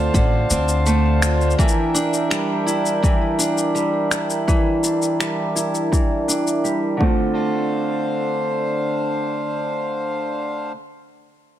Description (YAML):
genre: folktronica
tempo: 83 BPM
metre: 4/4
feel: straight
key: D minor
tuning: A4 = 441 Hz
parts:
  - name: pedal harmonium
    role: sustained chords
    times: 0.0-10.7 s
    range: D3 to A5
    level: -24 LUFS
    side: equal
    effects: low-pass filter
  - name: picked steel-string acoustic guitar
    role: arpeggios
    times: 0.0-10.8 s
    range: D3 to A4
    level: -22 LUFS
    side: right 1 dB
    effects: low-pass filter, ping-pong delay
  - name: upright bass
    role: bass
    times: 0.0-1.5 s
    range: A1 to D2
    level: -19 LUFS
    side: equal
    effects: none
  - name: electronic kick drum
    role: drums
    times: 0.1-7.2 s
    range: none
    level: -18 LUFS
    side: equal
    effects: overdrive
  - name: electronic shaker and finger snaps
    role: drums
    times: 0.1-6.8 s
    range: none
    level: -25 LUFS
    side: left 3 dB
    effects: overdrive
room: light reverb, studio reverb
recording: none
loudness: -18 LUFS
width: side -11 dB against mid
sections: 0.0-7.4 A section; 7.4-10.3 B section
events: filter sweep on steel-string acoustic guitar 0.0-7.4; filter sweep on harmonium 0.0-7.4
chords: 0.0 Dm7; 1.6 Em7b5; 7.0 Dm7